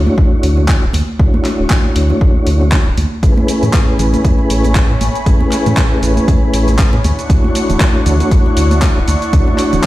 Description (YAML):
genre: deep house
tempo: 118 BPM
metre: 4/4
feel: swing 57% on 16ths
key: unclear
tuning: A4 = 440 Hz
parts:
  - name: mellow tonewheel organ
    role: stabs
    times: 0.0-9.9 s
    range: A3 to C#5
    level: -17 LUFS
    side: equal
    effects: chorus vibrato, fast rotary speaker, sidechain pumping, dub echo
  - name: sub bass with octave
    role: bass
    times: 0.0-9.8 s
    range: D1 to A2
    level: -14 LUFS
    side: equal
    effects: sidechain pumping
  - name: congas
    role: percussion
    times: 0.1-9.8 s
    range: none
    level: -23 LUFS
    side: right 3 dB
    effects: none
  - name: electronic kick drum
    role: drums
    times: 0.2-9.9 s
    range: none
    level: -13 LUFS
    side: equal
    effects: none
  - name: deep house drum kit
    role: drums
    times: 0.4-9.9 s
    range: handclaps, hi-hat, shaker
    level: -21 LUFS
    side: equal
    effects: none
  - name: warm analog pad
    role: sustained chords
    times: 3.2-9.9 s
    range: A3 to C#6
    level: -21 LUFS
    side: left 1 dB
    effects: wide subtle chorus, sidechain pumping
room: little or no reverb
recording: played on a big sound system in a bare room, stone room reverb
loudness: -10 LUFS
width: side -16 dB against mid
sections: 0.0-9.9 A section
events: none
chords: 0.0 Dmaj9; 3.2 Amaj9; 7.0 Dmaj9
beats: 0.18 0.69 | 1.20 1.70 2.21 2.72 | 3.23 3.74 4.25 4.75 | 5.26 5.77 6.28 6.79 | 7.30 7.81 8.31 8.82 | 9.33 9.84